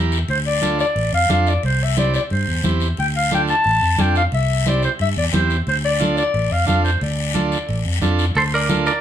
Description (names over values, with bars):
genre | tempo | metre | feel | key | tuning
latin, cumbia | 178 BPM | 4/4 | straight | D minor | A4 = 440 Hz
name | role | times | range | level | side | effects
combo organ | accompaniment | 0.0-8.9 s | C4 to Bb4 | -25 LUFS | right 6 dB | spring reverb
fingered electric bass | bass | 0.0-8.9 s | A1 to G2 | -20 LUFS | equal | none
guiro | percussion | 0.1-9.0 s | none | -28 LUFS | left 6 dB | none
clear clarinet | second line | 0.3-8.0 s | C5 to A5 | -20 LUFS | left 2 dB | none
congas | percussion | 0.3-8.9 s | none | -25 LUFS | equal | none
clean electric guitar | melody | 8.4-9.0 s | A4 to D5 | -18 LUFS | right 3 dB | spring reverb
room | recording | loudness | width
moderate studio ambience, RT60 0.5 s | band playing live in one room | -16 LUFS | side -10 dB against mid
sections
0.0-8.4 A section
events
clarinet solo 0.0-8.4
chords
0.3 Dm; 1.6 C; 3.0 Dm; 4.3 C; 5.7 Dm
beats
| 0.28 0.62 0.96 1.29 | 1.63 1.97 2.31 2.64 | 2.98 3.31 3.65 3.99 | 4.32 4.66 5.00 5.33 | 5.67 6.00 6.34 6.67 | 7.01 7.35 7.68 8.02 | 8.35 8.69